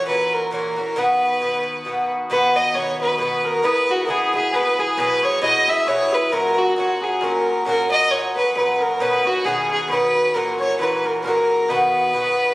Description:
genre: celtic folk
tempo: 134 BPM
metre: 3/4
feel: swing 57% on 8ths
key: B major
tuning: A4 = 439 Hz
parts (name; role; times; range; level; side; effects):
- dark fiddle; melody; 0.0-12.5 s; F#4 to E5; -19 LUFS; equal; plate reverb
- Irish bouzouki; accompaniment; 0.0-12.5 s; A#2 to G#4; -23 LUFS; equal; none
- cimbalom; second line; 2.3-12.5 s; F#4 to E5; -25 LUFS; equal; none
room: moderate studio reverb, RT60 0.6 s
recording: recorded on a phone in the room, studio reverb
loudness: -17 LUFS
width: side -19 dB against mid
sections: 0.0-2.3 A section; 2.3-12.5 A section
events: none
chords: 0.0 F#7; 1.0 B; 3.6 C#m7; 5.0 Eadd9; 6.3 F#; 9.0 Badd9; 10.4 F#7; 11.7 B

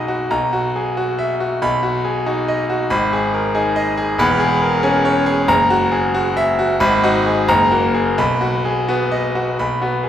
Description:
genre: classical, virtuoso piano study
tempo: 83-94 BPM (dotted quarters)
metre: 6/8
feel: rubato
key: B major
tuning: A4 = 440 Hz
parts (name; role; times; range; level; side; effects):
- bright concert grand piano; solo; 0.0-10.1 s; E1 to B5; -15 LUFS; equal; none
room: wet scoring stage reverb, RT60 2.0 s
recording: heard from further back in the room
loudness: -15 LUFS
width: side -10 dB against mid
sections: 0.0-9.6 A section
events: none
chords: 0.3 F#7/B; 1.6 B; 2.9 G#m; 4.2 C#m7/E; 5.5 F#7; 6.8 G#m7; 7.5 F#; 8.2 B; 9.6 B5

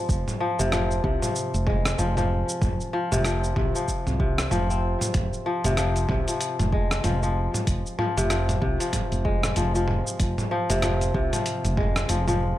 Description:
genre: organic downtempo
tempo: 95 BPM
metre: 4/4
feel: swing 60% on 16ths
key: F minor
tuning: A4 = 439 Hz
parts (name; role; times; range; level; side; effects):
- kora; arpeggios; 0.0-12.6 s; C3 to C4; -26 LUFS; left 2 dB; tape echo
- woody fretless electric bass; bass; 0.1-12.5 s; F1 to C2; -26 LUFS; equal; sidechain pumping
- dusty soul sampler-style drum kit; drums; 0.1-12.4 s; cabasa, hi-hat, rim click, toms; -29 LUFS; equal; none
- electronic kick drum; drums; 0.1-11.9 s; none; -27 LUFS; equal; none
room: digital ambience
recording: dry, gritty hardware recording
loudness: -22 LUFS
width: side -14 dB against mid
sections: 0.0-12.6 A section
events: none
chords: 0.0 Fm

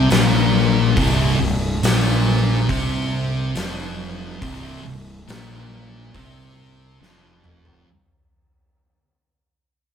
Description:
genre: stoner and doom metal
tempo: 70 BPM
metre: 4/4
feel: straight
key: unclear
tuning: A4 = 440 Hz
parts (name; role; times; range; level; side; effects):
- thick fuzz guitar; riff; 0.0-7.9 s; C2 to C4; -22 LUFS; left 8 dB; distortion
- thick fuzz guitar; riff; 0.0-7.9 s; C2 to C4; -22 LUFS; right 4 dB; distortion
- fuzz fingered electric bass; bass; 0.0-7.8 s; C1 to C2; -25 LUFS; left 2 dB; overdrive
- oversized low-tuned drum kit; drums; 0.1-7.9 s; hi-hat, kick drum, snare drum, toms; -24 LUFS; equal; none
room: moderate large studio reverb, RT60 1.3 s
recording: band playing live in one room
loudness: -16 LUFS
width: side -8 dB against mid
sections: 0.0-7.9 A section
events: fade-out 0.0-7.9; drum fill 7.0-7.9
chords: 0.0 C7sus4

